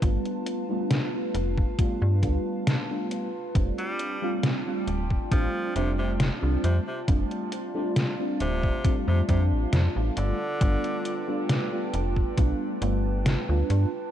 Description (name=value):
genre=vaporwave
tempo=68 BPM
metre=4/4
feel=straight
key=F lydian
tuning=A4 = 442 Hz
part: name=mellow FM electric piano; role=accompaniment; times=0.0-13.9 s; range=G3 to F4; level=-30 LUFS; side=equal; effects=phaser, analog chorus, tape echo
part: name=warbly tape-like pad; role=sustained chords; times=0.0-14.1 s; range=F4 to A5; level=-36 LUFS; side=right 1 dB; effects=chorus, built-in reverb, phaser
part: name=slap-like FM bass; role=bass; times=0.0-13.9 s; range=D1 to G2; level=-25 LUFS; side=equal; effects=none
part: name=detuned 8-bit digital drum machine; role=drums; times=0.0-13.9 s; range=hi-hat, snare drum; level=-28 LUFS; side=equal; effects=studio reverb, gated reverb
part: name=electronic kick drum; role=drums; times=0.0-12.6 s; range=none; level=-24 LUFS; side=equal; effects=studio reverb
part: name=edgy tenor saxophone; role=melody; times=3.8-11.4 s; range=C3 to G3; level=-34 LUFS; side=equal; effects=tape echo
room=digital ambience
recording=cassette tape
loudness=-24 LUFS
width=side -11 dB against mid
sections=0.0-14.1 A section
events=none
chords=0.0 G9; 3.6 F69; 10.2 G9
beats=| 0.02 0.91 1.79 2.67 | 3.55 4.44 5.32 6.20 | 7.08 7.96 8.85 9.73 | 10.61 11.49 12.38 13.26